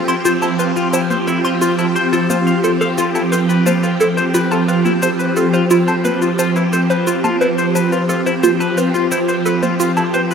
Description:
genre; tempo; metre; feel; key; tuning
ambient, sequencer-driven space music; 88 BPM; 4/4; straight; F lydian; A4 = 440 Hz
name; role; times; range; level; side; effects
phased string machine; sustained chords; 0.0-10.3 s; F3 to G4; -16 LUFS; right 1 dB; ensemble chorus, phaser
twangy electric guitar; arpeggios; 0.0-10.3 s; E4 to F5; -21 LUFS; left 2 dB; auto-pan, ping-pong delay, shimmer reverb
hollow square pluck; riff; 0.1-10.2 s; F4 to C6; -19 LUFS; equal; analog chorus, ping-pong delay, shimmer reverb
shaker and congas; percussion; 0.1-10.3 s; none; -27 LUFS; right 1 dB; ping-pong delay
room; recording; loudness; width
wet lush hall reverb, RT60 2.8 s; none; -13 LUFS; side -6 dB against mid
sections
0.0-10.3 A section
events
none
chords
0.0 F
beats
| 0.25 0.94 1.62 2.30 | 2.98 3.66 4.34 5.03 | 5.71 6.39 7.07 7.75 | 8.44 9.12 9.80

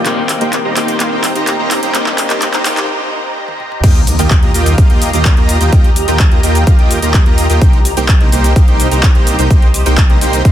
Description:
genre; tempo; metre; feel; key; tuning
EDM, festival progressive house; 127 BPM; 4/4; straight; Eb major; A4 = 440 Hz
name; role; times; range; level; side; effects
electric guitar at the edge of break-up; accompaniment; 0.0-2.9 s; Eb3 to G4; -22 LUFS; left 4 dB; sidechain pumping, ping-pong delay
lush unison pad; sustained chords; 0.0-10.5 s; G4 to C6; -22 LUFS; equal; chorus, phaser, sidechain pumping
dense compressed supersaw; riff; 0.0-10.5 s; Bb3 to Bb5; -17 LUFS; right 1 dB; sidechain pumping, low-pass filter, ping-pong delay
detuned saw bass; bass; 0.0-10.5 s; C2 to Eb2; -17 LUFS; equal; sidechain pumping, high-pass filter
riser and impact; sound effects; 0.0-5.7 s; none; -23 LUFS; equal; none
big-room dance drum kit; drums; 0.1-10.5 s; crash cymbal, handclaps, hi-hat, shaker, toms; -18 LUFS; equal; overdrive, small room ambience
electronic kick drum; drums; 3.8-10.5 s; none; -9 LUFS; equal; overdrive, small room ambience
room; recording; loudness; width
little or no reverb; dense, heavily limited modern master, high-pass filter; -9 LUFS; side -11 dB against mid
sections
0.0-3.8 A section; 3.8-10.5 B section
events
build-up 0.0-3.8; drum fill 0.0-2.9, 3.5-3.8; filter sweep on supersaw synth 0.0-3.8; break 2.9-3.8; drop 3.8-10.5; impact 3.8-5.7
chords
0.1 Cm7; 3.8 Ebadd9; 7.6 Cm7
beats
| 0.06 0.53 1.00 1.47 | 1.95 2.42 2.89 3.36 | 3.84 4.31 4.78 5.25 | 5.73 6.20 6.67 7.14 | 7.62 8.09 8.56 9.03 | 9.51 9.98 10.45

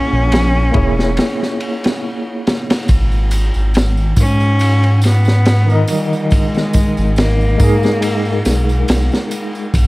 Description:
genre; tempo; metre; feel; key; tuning
trip hop; 70 BPM; 4/4; swing 55% on 16ths; G# minor; A4 = 440 Hz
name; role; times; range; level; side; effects
rich cello; melody; 0.0-8.9 s; G3 to C#4; -20 LUFS; equal; vintage 12-bit sampler grit, tape echo
tine electric piano; accompaniment; 0.0-9.7 s; D#3 to D#5; -20 LUFS; equal; medium stereo tremolo, tape echo
dark detuned saw bass; bass; 0.1-9.9 s; E1 to G#2; -14 LUFS; equal; none
crunchy breakbeat drum kit; drums; 0.3-9.9 s; kick drum, ride cymbal, snare drum; -17 LUFS; equal; none
tambourine; percussion; 2.9-9.9 s; none; -34 LUFS; right 2 dB; none
room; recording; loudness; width
small room ambience; vinyl crackle; -12 LUFS; side -21 dB against mid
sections
0.0-9.9 A section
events
break 1.2-2.9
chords
0.0 A#m7b5; 2.9 G#sus2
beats
0.31 1.17 2.03 | 2.88 3.74 4.60 5.46 | 6.31 7.17 8.03 8.88 | 9.74

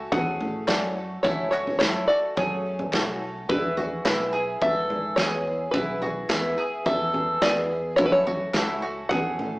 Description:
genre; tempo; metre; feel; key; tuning
indie folk with a building arrangement; 107 BPM; 4/4; straight; unclear; A4 = 441 Hz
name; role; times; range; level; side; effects
picked twelve-string acoustic guitar; accompaniment; 0.0-9.6 s; F#2 to A4; -31 LUFS; equal; none
mandolin; arpeggios; 0.0-9.6 s; E4 to A4; -30 LUFS; right 1 dB; none
fingered electric bass; bass; 0.0-9.6 s; B1 to A2; -36 LUFS; equal; none
open-back banjo; melody; 0.1-9.6 s; B4 to F#5; -25 LUFS; equal; none
unplugged drum kit; drums; 0.1-9.5 s; kick drum, snare drum, toms; -27 LUFS; equal; none
group handclap; percussion; 0.7-8.7 s; none; -36 LUFS; equal; none
room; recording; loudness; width
moderate stone room reverb, RT60 1.2 s; rough rehearsal-room recording, tube saturation, small speaker sound; -22 LUFS; side -22 dB against mid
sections
0.0-9.6 A section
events
none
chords
0.0 E; 8.0 F#m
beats
0.12 0.68 | 1.24 1.80 2.37 2.93 | 3.49 4.05 4.61 5.17 | 5.74 6.30 6.86 7.42 | 7.99 8.55 9.11

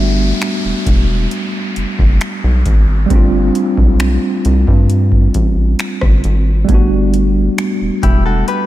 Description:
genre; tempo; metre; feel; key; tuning
contemporary R&B; 67 BPM; 4/4; straight; G major; A4 = 440 Hz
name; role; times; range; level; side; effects
tine electric piano; accompaniment; 0.0-8.7 s; G3 to F#4; -17 LUFS; right 1 dB; medium stereo tremolo
rubbery square bass; bass; 0.0-8.4 s; E1 to G2; -14 LUFS; equal; none
downlifter; sound effects; 0.0-6.7 s; none; -27 LUFS; equal; none
booming analog drum machine; drums; 0.4-8.7 s; finger snaps, hi-hat, kick drum, rim click; -14 LUFS; equal; overdrive
direct-recorded clean electric guitar; arpeggios; 8.0-8.7 s; E4 to B4; -18 LUFS; left 5 dB; phaser
room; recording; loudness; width
light reverb, digital ambience; none; -11 LUFS; side -14 dB against mid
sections
0.0-8.7 A section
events
none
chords
0.0 Gmaj7; 3.1 F69/G; 6.7 Gmaj7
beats
0.42 1.31 2.21 | 3.10 4.00 4.89 5.79 | 6.69 7.58 8.48

